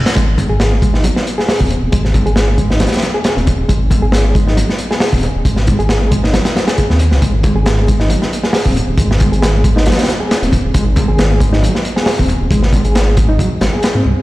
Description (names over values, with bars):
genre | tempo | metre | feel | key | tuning
breakbeat, breaks | 136 BPM | 4/4 | swing 54% on 16ths | unclear | A4 = 441 Hz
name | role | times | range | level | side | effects
dark detuned saw bass | bass | 0.0-14.1 s | D#1 to G#2 | -14 LUFS | equal | none
crunchy breakbeat drum kit | drums | 0.1-13.9 s | hi-hat, kick drum, snare drum | -14 LUFS | equal | none
reed electric piano | riff | 0.2-14.0 s | F#3 to G#4 | -19 LUFS | equal | fast tremolo, tube saturation, dub echo
congas | percussion | 0.4-14.1 s | none | -24 LUFS | left 3 dB | none
room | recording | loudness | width
light reverb, small room ambience | played on a big sound system in a bare room, stone room reverb | -11 LUFS | side -17 dB against mid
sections
0.0-14.2 A section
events
none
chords
0.0 G#5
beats
| 0.16 0.60 1.04 1.48 | 1.92 2.36 2.81 3.25 | 3.69 4.13 4.57 5.01 | 5.45 5.89 6.33 6.78 | 7.22 7.66 8.10 8.54 | 8.98 9.42 9.86 10.30 | 10.75 11.19 11.63 12.07 | 12.51 12.95 13.39 13.84